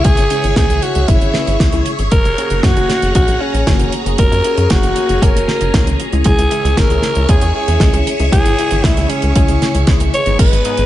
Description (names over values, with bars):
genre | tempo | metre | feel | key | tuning
italo disco | 116 BPM | 4/4 | straight | unclear | A4 = 440 Hz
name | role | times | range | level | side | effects
raspy alto saxophone | melody | 0.0-10.9 s | C#4 to C#5 | -18 LUFS | equal | ping-pong delay
phased string machine | sustained chords | 0.0-10.9 s | B3 to D#6 | -22 LUFS | right 1 dB | ensemble chorus, phaser
chorused polysynth | stabs | 0.0-10.9 s | G#2 to B4 | -21 LUFS | left 2 dB | phaser
tight sequencer bass | bass | 0.0-10.9 s | F#1 to F#2 | -17 LUFS | equal | none
damped 70s drum kit | drums | 0.0-10.9 s | crash cymbal, hi-hat, snare drum | -20 LUFS | right 1 dB | small room ambience, gated reverb
electronic kick drum | drums | 0.0-10.5 s | none | -14 LUFS | equal | small room ambience
room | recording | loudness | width
light reverb | nothing above 10.8 kHz | -11 LUFS | side -13 dB against mid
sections
0.0-10.4 A section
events
filter sweep on analog polysynth 0.0-10.4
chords
0.0 C#m; 2.1 F#add9; 6.3 G#m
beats
| 0.05 0.57 1.08 1.60 | 2.12 2.63 3.15 3.67 | 4.19 4.70 5.22 5.74 | 6.26 6.77 7.29 7.81 | 8.32 8.84 9.36 9.88 | 10.39